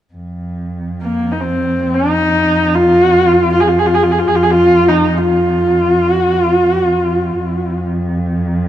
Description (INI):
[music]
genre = mongolian traditional, Mongolian folk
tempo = free time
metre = none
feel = none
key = F yu mode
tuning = A4 = 441 Hz
[part]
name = dark cello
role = drone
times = 0.1-8.7 s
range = F2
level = -18 LUFS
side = equal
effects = none
[part]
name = rich horsehead fiddle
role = melody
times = 1.0-7.8 s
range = Bb3 to Ab4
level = -12 LUFS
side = equal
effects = none
[sound]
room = moderate huge ambient reverb, RT60 4.3 s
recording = dark, warm production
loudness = -11 LUFS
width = side -11 dB against mid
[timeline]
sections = 0.2-8.7 A section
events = none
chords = none